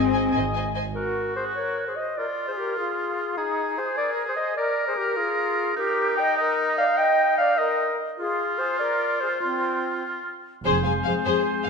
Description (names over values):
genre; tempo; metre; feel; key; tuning
cinematic, heroic adventure film score; 99 BPM (dotted quarters); 6/8; straight; F dorian; A4 = 440 Hz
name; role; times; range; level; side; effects
rich symphonic violin section; melody; 0.0-0.8, 10.6-11.7 s; C5 to Ab5; -28 LUFS; left 6 dB; none
clear oboe; second line; 0.0-11.7 s; Eb4 to Eb5; -28 LUFS; right 2 dB; none
silver concert flute; second line; 0.0-11.7 s; C4 to Ab5; -28 LUFS; left 1 dB; none
warm clarinet; second line; 0.0-11.7 s; F4 to G5; -26 LUFS; left 1 dB; none
warm symphonic violin section; second line; 0.0-0.8, 10.6-11.7 s; Ab4 to F5; -30 LUFS; left 5 dB; none
rich symphonic viola section; accompaniment; 0.0-0.3, 10.7-11.7 s; C4 to Ab4; -30 LUFS; left 1 dB; none
mellow French horn section; sustained chords; 0.0-0.3, 10.7-11.7 s; Ab3 to C4; -27 LUFS; left 6 dB; none
rich symphonic cello section; bass; 0.0-0.3, 10.7-11.7 s; F2 to C4; -32 LUFS; right 3 dB; none
rich symphonic double bass section; bass; 0.0-0.9, 10.7-10.8 s; F1 to Ab1; -30 LUFS; right 5 dB; none
room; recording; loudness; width
wet scoring stage reverb, RT60 1.6 s; none; -22 LUFS; side -5 dB against mid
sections
1.0-10.6 A section; 10.6-11.7 B section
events
none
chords
0.0 Ab; 1.0 N.C.; 10.6 Fm